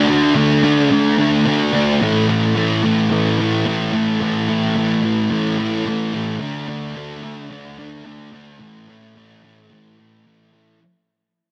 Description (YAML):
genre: rock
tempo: 109 BPM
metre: 4/4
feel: straight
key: unclear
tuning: A4 = 441 Hz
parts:
  - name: thick fuzz guitar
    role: solo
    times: 0.0-10.8 s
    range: A2 to D4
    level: -18 LUFS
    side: equal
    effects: distortion, subtle chorus
room: light reverb, digital ambience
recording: none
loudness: -17 LUFS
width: mono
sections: 0.0-10.8 A section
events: fade-out 0.0-10.8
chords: 0.0 D5; 2.0 A5; 6.4 D5; 8.6 A5